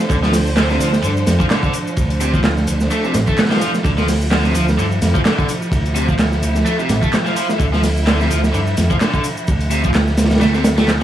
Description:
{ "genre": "breakbeat, breaks", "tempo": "128 BPM", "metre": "4/4", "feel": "swing 56% on 16ths", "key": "D minor", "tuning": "A4 = 439 Hz", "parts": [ { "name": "rich chamber string section", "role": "sustained chords", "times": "0.0-11.0 s", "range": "F3 to E5", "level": "-24 LUFS", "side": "right 1 dB", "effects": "vintage 12-bit sampler grit, sidechain pumping" }, { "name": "house drum kit", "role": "drums", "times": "0.0-11.0 s", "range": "handclaps, hi-hat, shaker", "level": "-27 LUFS", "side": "equal", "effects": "none" }, { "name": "raw garage guitar", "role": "riff", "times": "0.1-11.0 s", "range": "C3 to A3", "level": "-21 LUFS", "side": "equal", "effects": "overdrive, digital delay" }, { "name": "overdriven picked electric bass", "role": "bass", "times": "0.1-11.0 s", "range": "A1 to G2", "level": "-18 LUFS", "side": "equal", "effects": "none" }, { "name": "crunchy breakbeat drum kit", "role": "drums", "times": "0.1-11.0 s", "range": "hi-hat, kick drum, ride cymbal, snare drum", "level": "-17 LUFS", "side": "right 1 dB", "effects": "none" } ], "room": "light reverb, studio ambience", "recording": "vinyl crackle", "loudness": "-14 LUFS", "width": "side -11 dB against mid", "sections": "0.0-11.0 A section", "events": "kick drops out 10.4-11.0", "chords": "0.0 Dm7", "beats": "| 0.10 0.57 1.04 1.51 | 1.98 2.44 2.91 3.38 | 3.85 4.32 4.79 5.26 | 5.72 6.19 6.66 7.13 | 7.60 8.07 8.54 9.01 | 9.47 9.94 10.41 10.88" }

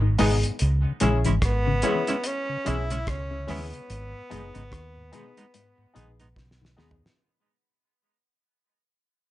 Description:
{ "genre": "roots reggae", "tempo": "73 BPM", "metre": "4/4", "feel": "swing 59% on 16ths", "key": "unclear", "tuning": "A4 = 439 Hz", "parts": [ { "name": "mellow tonewheel organ", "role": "accompaniment", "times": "0.0-7.1 s", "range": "G#2 to C#4", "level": "-34 LUFS", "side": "left 2 dB", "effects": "none" }, { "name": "semi-hollow electric guitar", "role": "arpeggios", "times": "0.0-7.0 s", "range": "G#2 to E3", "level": "-32 LUFS", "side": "left 6 dB", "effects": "tremolo" }, { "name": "vintage muted fingered electric bass", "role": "bass", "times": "0.0-7.0 s", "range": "F#1 to D#2", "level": "-25 LUFS", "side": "equal", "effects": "none" }, { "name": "semi-hollow electric guitar", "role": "accompaniment", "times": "0.2-6.9 s", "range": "G#3 to E4", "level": "-30 LUFS", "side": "right 4 dB", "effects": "tremolo, dub echo, plate reverb" }, { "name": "warm upright piano", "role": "stabs", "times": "0.2-6.9 s", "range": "B3 to G#4", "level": "-30 LUFS", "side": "left 4 dB", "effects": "plate reverb" }, { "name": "cloth-damped thuddy drum kit", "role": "drums", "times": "0.2-7.3 s", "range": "hi-hat, kick drum, rim click, snare drum, toms", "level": "-30 LUFS", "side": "equal", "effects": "none" }, { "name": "warm tenor saxophone", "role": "melody", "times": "1.5-6.7 s", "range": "B3 to E4", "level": "-32 LUFS", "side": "right 1 dB", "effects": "plate reverb" } ], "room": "light reverb", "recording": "nothing above 10.5 kHz", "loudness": "-22 LUFS", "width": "side -15 dB against mid", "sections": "0.0-7.2 A section", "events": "fade-out 0.0-7.2; drum fill 6.4-7.2", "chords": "0.0 G#m; 0.6 C#m; 3.9 G#m", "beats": "| 0.60 1.43 2.25 3.07 | 3.89 4.71 5.54 6.36" }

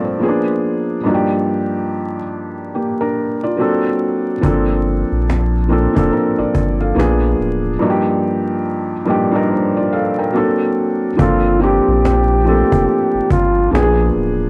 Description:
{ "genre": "lo-fi hip hop", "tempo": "71 BPM", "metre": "4/4", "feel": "swing 61% on 16ths", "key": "G minor", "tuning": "A4 = 440 Hz", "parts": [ { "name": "felt-muted upright piano", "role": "accompaniment", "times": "0.0-14.5 s", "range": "G2 to G5", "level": "-18 LUFS", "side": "equal", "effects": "cassette tape, low-pass filter" }, { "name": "warm sub bass", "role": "bass", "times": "4.4-14.5 s", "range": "D1 to Bb1", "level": "-20 LUFS", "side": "equal", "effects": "none" }, { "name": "cajon", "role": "drums", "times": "4.4-14.5 s", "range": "none", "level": "-22 LUFS", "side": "equal", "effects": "none" }, { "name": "breathy flugelhorn", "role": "melody", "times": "11.2-14.1 s", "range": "F4 to Ab4", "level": "-19 LUFS", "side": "equal", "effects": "low-pass filter" } ], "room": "light reverb", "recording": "dry, gritty hardware recording, vinyl crackle", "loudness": "-16 LUFS", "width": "mono", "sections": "0.0-11.2 A section; 11.2-14.5 B section", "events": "none", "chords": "0.2 Bb7b9; 1.1 Ebmaj9/G; 3.6 D7b13; 4.4 Gm11; 7.0 Bb7b9; 7.8 Ebmaj9/G; 10.3 D7b13; 11.2 Gm11; 13.7 Bb7b9", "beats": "0.21 | 1.05 1.90 2.74 3.59 | 4.43 5.28 6.12 6.97 | 7.81 8.66 9.50 10.35 | 11.19 12.04 12.88 13.73" }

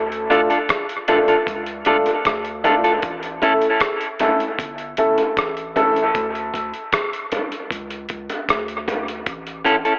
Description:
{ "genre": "dub reggae", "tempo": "77 BPM", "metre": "4/4", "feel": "straight", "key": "D harmonic minor", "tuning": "A4 = 441 Hz", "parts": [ { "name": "soft dub sub bass", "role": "bass", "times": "0.0-9.8 s", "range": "G1 to D2", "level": "-34 LUFS", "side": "equal", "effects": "none" }, { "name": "dusty soul sampler-style drum kit", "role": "drums", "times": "0.1-10.0 s", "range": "hi-hat, kick drum, rim click", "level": "-23 LUFS", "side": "equal", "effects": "overdrive, dub echo" }, { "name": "clean electric guitar", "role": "accompaniment", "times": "0.3-3.5, 9.7-9.9 s", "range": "C#4 to A4", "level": "-20 LUFS", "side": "equal", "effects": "dub echo" }, { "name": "warm upright piano", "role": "stabs", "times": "0.3-6.0 s", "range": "A3 to A4", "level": "-20 LUFS", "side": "equal", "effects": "dub echo" }, { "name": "bongos", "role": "percussion", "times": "1.1-9.8 s", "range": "none", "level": "-28 LUFS", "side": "equal", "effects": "dub echo" } ], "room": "wet spring reverb, RT60 2.5 s", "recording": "echo-heavy mix, telephone sound", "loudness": "-17 LUFS", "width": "side -37 dB against mid", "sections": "0.0-10.0 A section", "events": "break 3.0-10.0", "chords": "0.0 Dm; 3.0 A; 6.1 N.C.; 9.3 A", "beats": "0.69 1.47 2.25 | 3.03 3.81 4.59 5.37 | 6.15 6.93 7.71 8.48 | 9.26" }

